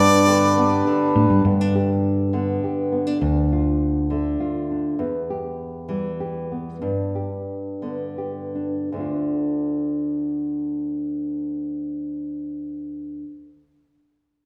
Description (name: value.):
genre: acoustic folk duo or small band.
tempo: 77-102 BPM.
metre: 3/4.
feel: straight.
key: D dorian.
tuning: A4 = 442 Hz.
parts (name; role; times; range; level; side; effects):
warm harmonica; melody; 0.0-1.2 s; D5; -21 LUFS; equal; none.
nylon-string guitar; accompaniment; 0.0-13.3 s; D2 to G4; -25 LUFS; equal; none.
pedal harmonium; sustained chords; 0.0-1.4 s; G3 to B4; -26 LUFS; equal; none.
hollow-body short-scale fingered electric bass; bass; 0.0-4.4 s; D2 to A2; -24 LUFS; equal; none.
room: wet recital hall reverb, RT60 1.6 s.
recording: recorded in a church or concert hall.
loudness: -23 LUFS.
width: mono.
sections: 0.0-1.4 A section; 1.4-8.9 B section; 8.9-13.6 C section.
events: slowing down 5.0-8.9.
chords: 0.0 G; 3.2 Dm; 5.0 Em; 6.8 G; 8.9 Dm.